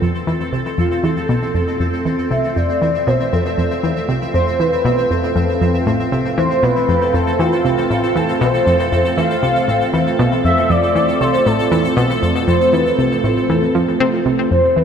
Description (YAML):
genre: ambient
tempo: 118 BPM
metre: 4/4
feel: straight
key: F lydian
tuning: A4 = 440 Hz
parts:
  - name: expressive synth lead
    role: melody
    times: 0.0-14.8 s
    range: F4 to F5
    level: -18 LUFS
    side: equal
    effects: analog chorus, cassette tape, ping-pong delay
  - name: sweeping resonant pad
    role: sustained chords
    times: 0.0-14.8 s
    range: A3 to F4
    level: -21 LUFS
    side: right 1 dB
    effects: chorus
  - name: analog pluck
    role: riff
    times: 0.0-14.8 s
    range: F2 to C4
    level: -18 LUFS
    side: equal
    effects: chorus, ping-pong delay
  - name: pulsing gated texture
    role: texture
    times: 0.0-14.5 s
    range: C4 to E5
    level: -24 LUFS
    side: left 1 dB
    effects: chorus, built-in reverb
room: wet cathedral reverb, RT60 5.5 s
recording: in a vast, echoing space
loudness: -14 LUFS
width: side -7 dB against mid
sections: 0.0-14.5 A section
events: fade-in on analog synth pad 0.0-14.5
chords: 0.0 F